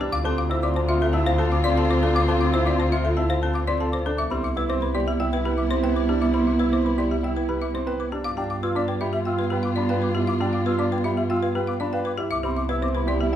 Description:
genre	classical, minimalist pattern music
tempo	118 BPM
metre	4/4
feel	straight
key	unclear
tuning	A4 = 440 Hz
part	folk marimba with hard mallets	melody	0.0-13.4 s	G4 to A5	-29 LUFS	left 5 dB	none
part	bright grand piano	arpeggios	0.0-13.4 s	C4 to B4	-29 LUFS	right 2 dB	none
part	mellow French horn	second line	0.1-13.4 s	E4 to F4	-29 LUFS	right 4 dB	none
part	warm chamber string section	sustained chords	0.1-13.4 s	B3 to F4	-28 LUFS	equal	none
part	mellow hollow concert flute	arpeggios	0.1-13.3 s	E5 to E6	-31 LUFS	left 2 dB	none
part	clear double bass	bass	0.1-13.4 s	C2 to G2	-26 LUFS	equal	none
room	wet large studio reverb, RT60 1.1 s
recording	heard from further back in the room, vinyl crackle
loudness	-21 LUFS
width	side -10 dB against mid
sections	0.0-13.4 A section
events	none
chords	0.1 Dm7; 4.2 Cmaj7; 8.3 G7; 12.3 Cmaj7

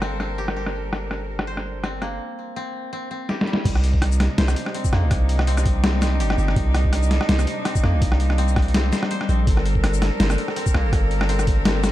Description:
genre	half-time drum and bass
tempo	165 BPM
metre	4/4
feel	swing 55% on 16ths, half-time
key	C dorian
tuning	A4 = 440 Hz
part	bright studio cello section	sustained chords	0.0-11.9 s	C3 to Bb4	-28 LUFS	equal	sidechain pumping
part	koto	arpeggios	0.0-11.9 s	G3 to C5	-31 LUFS	left 2 dB	ping-pong delay
part	long sustained 808-style bass	bass	0.0-11.9 s	G1 to F2	-21 LUFS	equal	none
part	boom bap sampler-style drum kit	drums	0.0-11.9 s	crash cymbal, hi-hat, rim click, shaker, snare drum	-24 LUFS	left 1 dB	overdrive, low-pass filter on snare, small room ambience, low-pass filter on hats, low-pass filter on cymbals, low-pass filter on perc
part	electronic kick drum	drums	3.7-11.6 s	none	-20 LUFS	equal	overdrive, small room ambience
room	little or no reverb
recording	dark, warm production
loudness	-18 LUFS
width	side -14 dB against mid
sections	0.0-3.7 A section; 3.7-11.9 B section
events	drum fill 3.3-3.7; drop 3.7-11.9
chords	0.0 Gm; 3.7 Cm7; 9.5 Gm

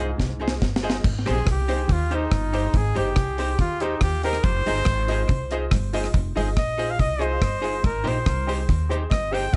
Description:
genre	ska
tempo	141 BPM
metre	4/4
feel	straight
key	Ab major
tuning	A4 = 441 Hz
part	bright trombone	melody	0.0-0.6 s	Ab2	-40 LUFS	equal	none
part	archtop guitar, miked and amplified	accompaniment	0.0-9.5 s	Eb4 to C5	-34 LUFS	equal	tape echo
part	honky-tonk upright piano	stabs	0.0-9.5 s	F4 to Eb5	-35 LUFS	equal	tape echo
part	upright bass	bass	0.0-9.6 s	F1 to Eb2	-29 LUFS	equal	none
part	deep reggae drum kit	drums	0.0-9.6 s	crash cymbal, hi-hat, kick drum, rim click, snare drum	-26 LUFS	equal	tape echo
part	mellow electric guitar	riff	0.2-9.6 s	F2 to Eb3	-34 LUFS	equal	ensemble chorus
part	clear trumpet	melody	1.3-9.6 s	Eb4 to G5	-30 LUFS	equal	tape echo
room	light reverb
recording	dark, warm production, nothing above 11.0 kHz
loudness	-23 LUFS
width	mono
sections	0.0-1.0 A section; 1.0-9.6 B section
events	drum fill 0.2-1.0; trumpet solo 1.0-9.6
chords	0.0 Fm7; 1.0 Abmaj7; 4.4 Fm7; 7.8 Abmaj7

